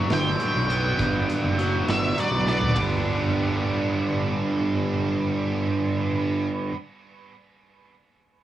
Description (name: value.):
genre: indie rock.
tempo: 68 BPM (dotted quarters).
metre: 6/8.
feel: straight.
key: G major.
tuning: A4 = 443 Hz.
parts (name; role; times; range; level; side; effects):
biting overdriven guitar; riff; 0.0-6.8 s; G2 to G4; -27 LUFS; left 3 dB; none.
scooped high-gain guitar; riff; 0.0-6.8 s; G3 to B4; -30 LUFS; right 8 dB; distortion, ensemble chorus, tape echo.
fuzz picked electric bass; bass; 0.0-6.7 s; F#1 to B1; -26 LUFS; right 2 dB; overdrive.
octave-fuzz lead guitar; melody; 0.1-2.8 s; D5 to G5; -28 LUFS; right 1 dB; distortion, cassette tape.
big rock drum kit; drums; 0.1-2.9 s; hi-hat, kick drum, ride cymbal, snare drum, toms; -31 LUFS; right 2 dB; cassette tape.
room: little or no reverb.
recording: home recording on cassette.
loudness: -22 LUFS.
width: side -12 dB against mid.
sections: 0.0-2.8 A section; 2.8-6.3 B section.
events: lead electric guitar solo 0.0-2.8; drum fill 2.5.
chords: 0.0 Gmaj7; 2.8 G.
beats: 0.10 | 0.99 1.87 | 2.76 3.64 | 4.53 5.41.